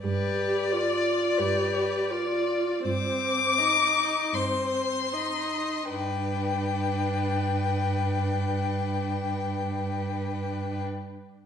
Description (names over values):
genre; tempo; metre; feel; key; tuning
classical, slow romantic movement for string quartet; 37-45 BPM; 4/4; rubato; G major; A4 = 440 Hz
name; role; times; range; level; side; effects
rich violin; melody; 0.0-10.8 s; D5 to D6; -28 LUFS; left 6 dB; none
dark cello; bass; 0.0-10.8 s; G2; -32 LUFS; right 3 dB; none
dark violin; second line; 0.1-10.8 s; B4 to Eb5; -33 LUFS; left 2 dB; none
warm viola; accompaniment; 0.1-10.8 s; C4 to G4; -31 LUFS; right 1 dB; none
room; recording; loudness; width
wet recital hall reverb, RT60 1.4 s; recorded in a church or concert hall, nothing above 11.0 kHz; -24 LUFS; side -8 dB against mid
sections
0.1-5.9 A section; 5.9-11.5 B section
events
slowing down 0.0-5.9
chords
0.1 G7; 2.8 Cm/G; 5.9 G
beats
| 0.05 1.40 2.85 4.34 | 5.92 7.50 9.09 10.70